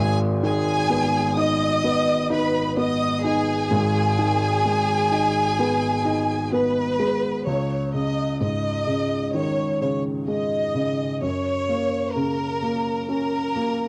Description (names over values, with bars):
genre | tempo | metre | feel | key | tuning
pop | 64 BPM | 4/4 | straight | G# minor | A4 = 440 Hz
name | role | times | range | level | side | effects
clear studio violin section | melody | 0.0-13.9 s | G#4 to D#6 | -26 LUFS | equal | cassette tape, plate reverb
felt-muted upright piano | accompaniment | 0.0-13.9 s | G#1 to D#4 | -25 LUFS | equal | cassette tape
room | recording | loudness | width
moderate booth ambience, RT60 0.2 s | home recording on cassette | -23 LUFS | mono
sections
0.0-7.5 A section; 7.5-13.9 B section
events
none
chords
0.0 G#m; 7.5 C#sus2; 11.2 F#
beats
0.91 1.84 2.78 | 3.72 4.66 5.59 6.53 | 7.47 8.40 9.34 10.28 | 11.22 12.15 13.09